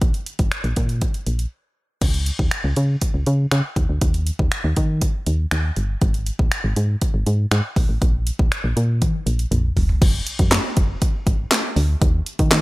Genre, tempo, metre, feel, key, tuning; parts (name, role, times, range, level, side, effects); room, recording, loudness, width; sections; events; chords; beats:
dance-pop; 120 BPM; 4/4; straight; A4 = 440 Hz
solid FM bass; bass; 0.0-12.6 s; F1 to Eb3; -20 LUFS; equal; sidechain pumping
house drum kit; drums; 0.0-12.6 s; crash cymbal, finger snaps, handclaps, hi-hat, kick drum, snare drum, toms; -20 LUFS; equal
little or no reverb; -18 LUFS; side -20 dB against mid
0.0-2.0 A section; 2.0-10.0 B section; 10.0-12.6 C section
break 1.5-2.0; drum fill 9.0-10.0
| 0.02 0.52 1.02 1.52 | 2.02 2.52 3.02 3.52 | 4.02 4.52 5.02 5.52 | 6.02 6.52 7.02 7.52 | 8.02 8.52 9.02 9.52 | 10.02 10.52 11.02 11.52 | 12.02 12.52